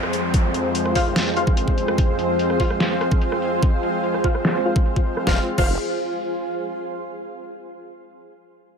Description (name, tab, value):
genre	heavy wobble dubstep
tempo	146 BPM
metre	4/4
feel	half-time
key	F minor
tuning	A4 = 440 Hz
part	supersaw pad	sustained chords	0.0-5.5 s	F2 to C5	-24 LUFS	equal	sidechain pumping
part	dubstep drum kit	drums	0.0-5.7 s	crash cymbal, hi-hat, rim click, snare drum	-25 LUFS	equal	overdrive, low-pass filter on hats, low-pass filter on snare, low-pass filter on cymbals
part	downlifter	sound effects	0.0-2.0 s	none	-30 LUFS	equal	none
part	granular cloud pad	texture	0.3-6.9 s	F4 to F5	-26 LUFS	right 1 dB	built-in reverb, sidechain pumping
part	electronic kick drum	drums	0.3-5.7 s	none	-20 LUFS	equal	overdrive
part	orchestra-hit-like synth stab	stabs	1.0-5.7 s	F4 to F5	-26 LUFS	left 1 dB	built-in reverb, ping-pong delay
part	formant-sweep wobble bass	bass	5.3-5.8 s	F1	-25 LUFS	equal	chorus, overdrive
room	light reverb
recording	none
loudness	-18 LUFS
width	side -6 dB against mid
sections	0.0-5.3 A section; 5.3-6.9 B section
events	filter sweep on drum 0.0-5.3; filter sweep on synth stab 0.0-5.3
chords	0.0 Fm